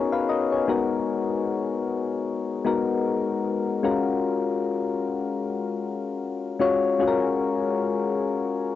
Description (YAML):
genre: R&B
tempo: 76 BPM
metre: 4/4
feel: swing 58% on 16ths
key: F# major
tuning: A4 = 440 Hz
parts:
  - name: soft electric-piano-like synth keys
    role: solo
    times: 0.0-8.8 s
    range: G#3 to E#5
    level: -23 LUFS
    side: left 4 dB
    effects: chorus, cassette tape
room: moderate booth ambience, RT60 0.2 s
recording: home recording on cassette, nothing above 8.0 kHz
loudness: -23 LUFS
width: side -12 dB against mid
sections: 0.0-3.8 A section; 3.8-8.8 B section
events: none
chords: 0.0 Bmaj9; 0.7 G#m9; 3.8 F#maj9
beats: | 0.69 1.48 2.27 3.05 | 3.84 4.63 5.42 6.21 | 7.00 7.79 8.58